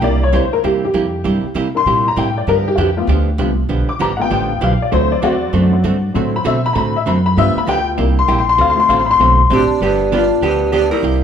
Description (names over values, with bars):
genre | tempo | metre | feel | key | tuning
country, western swing | 196 BPM | 4/4 | swing 63% on 8ths | unclear | A4 = 438 Hz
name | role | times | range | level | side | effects
hollow-body jazz guitar | accompaniment | 0.0-11.2 s | C3 to A4 | -21 LUFS | right 5 dB | none
honky-tonk upright piano | accompaniment | 0.0-11.0 s | E3 to D6 | -16 LUFS | left 4 dB | none
upright bass | bass | 0.0-11.2 s | G1 to C3 | -18 LUFS | right 1 dB | none
vintage hollow-body jazz guitar | melody | 9.5-11.2 s | B3 to Bb4 | -15 LUFS | right 1 dB | none
sitar | second line | 9.5-11.2 s | D4 to G4 | -20 LUFS | right 5 dB | none
room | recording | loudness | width
moderate large studio reverb, RT60 1.2 s | band playing live in one room | -13 LUFS | side -8 dB against mid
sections
0.0-9.8 A section; 9.8-11.2 B section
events
honky-tonk piano solo 0.0-9.8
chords
0.0 C7; 2.5 G7; 4.9 D7; 7.4 G7; 8.0 C7; 8.6 D7; 9.8 G7